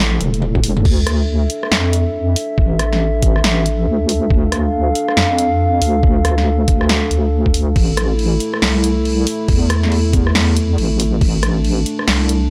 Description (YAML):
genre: deep dubstep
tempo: 139 BPM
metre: 4/4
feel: swing 61% on 16ths, half-time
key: D minor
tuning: A4 = 440 Hz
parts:
  - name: dark analog pad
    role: sustained chords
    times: 0.0-12.5 s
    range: A3 to F5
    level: -22 LUFS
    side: equal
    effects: subtle chorus
  - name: deep soft wobble bass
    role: bass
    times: 0.0-12.5 s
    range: E1 to F2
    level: -19 LUFS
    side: equal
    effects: chorus
  - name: deep house drum kit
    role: drums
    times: 0.2-12.4 s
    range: crash cymbal, hi-hat, rim click, snare drum, toms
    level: -22 LUFS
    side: equal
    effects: none
  - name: electronic kick drum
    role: drums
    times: 0.6-11.3 s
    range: none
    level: -18 LUFS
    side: equal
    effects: none
room: little or no reverb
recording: dry, gritty hardware recording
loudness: -16 LUFS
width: mono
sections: 0.0-12.5 A section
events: drum fill 0.2-0.9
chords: 0.0 A5; 0.9 Dmadd9; 7.8 Am